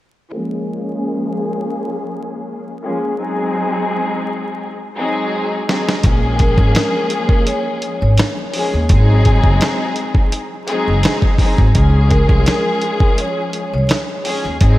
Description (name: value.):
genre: hip hop, boom-bap hip-hop.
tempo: 84 BPM.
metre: 4/4.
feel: swing 54% on 16ths.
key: Bb minor.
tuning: A4 = 441 Hz.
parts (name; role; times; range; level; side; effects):
muted studio string section; accompaniment; 0.3-14.8 s; F3 to Ab4; -19 LUFS; left 1 dB; cassette tape, high-pass filter, low-pass filter.
dusty soul sampler-style drum kit; drums; 5.7-14.8 s; hi-hat, kick drum, snare drum; -16 LUFS; equal; vintage 12-bit sampler grit.
upright bass; bass; 6.0-14.8 s; Gb1 to Eb2; -14 LUFS; equal; none.
vibraphone with soft mallets; melody; 6.4-14.6 s; Bb4 to Db5; -23 LUFS; equal; high-pass filter, low-pass filter, tape echo.
room: moderate church reverb, RT60 3.7 s.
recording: dreamy mix soaked in reverb, vinyl crackle.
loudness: -14 LUFS.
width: side -16 dB against mid.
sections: 0.3-6.0 A section; 6.0-14.8 B section.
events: filter sweep on string section 0.3-6.0; drum fill 4.6-6.0.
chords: 0.3 Bbm7; 3.2 Ab7; 6.0 Bbm7; 8.9 Ab7; 11.8 Db.